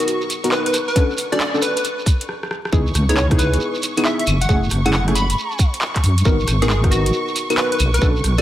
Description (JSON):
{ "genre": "UK garage, two-step garage", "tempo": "136 BPM", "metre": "4/4", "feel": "swing 65% on 16ths", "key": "C# minor", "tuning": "A4 = 440 Hz", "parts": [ { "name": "plucky unison lead", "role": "melody", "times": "0.0-8.4 s", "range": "F#4 to B5", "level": "-23 LUFS", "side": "equal", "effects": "digital delay" }, { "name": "warm studio violin section", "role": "sustained chords", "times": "0.0-8.4 s", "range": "C#6", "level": "-30 LUFS", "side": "right 1 dB", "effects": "sidechain pumping" }, { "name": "deep mellow chord stab", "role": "stabs", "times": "0.0-8.4 s", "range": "A3 to A#4", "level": "-22 LUFS", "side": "left 1 dB", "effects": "chorus" }, { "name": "garage drum kit", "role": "drums", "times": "0.0-8.4 s", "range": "claves, handclaps, hi-hat, rim click", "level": "-24 LUFS", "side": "equal", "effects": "none" }, { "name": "shekere", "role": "percussion", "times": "0.0-8.4 s", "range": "none", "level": "-28 LUFS", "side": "right 4 dB", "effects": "none" }, { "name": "electronic kick drum", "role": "drums", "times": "1.0-8.1 s", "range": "none", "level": "-16 LUFS", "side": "equal", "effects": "none" }, { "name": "deep soft wobble bass", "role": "bass", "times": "2.7-8.4 s", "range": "F#1 to F#2", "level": "-18 LUFS", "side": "equal", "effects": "chorus, sidechain pumping" } ], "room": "moderate lush hall reverb, RT60 1.9 s", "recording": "vinyl crackle", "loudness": "-16 LUFS", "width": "side -13 dB against mid", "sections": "0.0-2.7 A section; 2.7-8.4 B section", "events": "build-up 0.0-2.7; drum fill 2.3-2.7; stop 2.3-2.7; drop 2.7-8.4", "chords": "0.0 Bmaj9; 0.7 Bm9/C#; 2.7 C#m7; 4.3 F#m7; 6.3 G#m7; 7.8 Bm7" }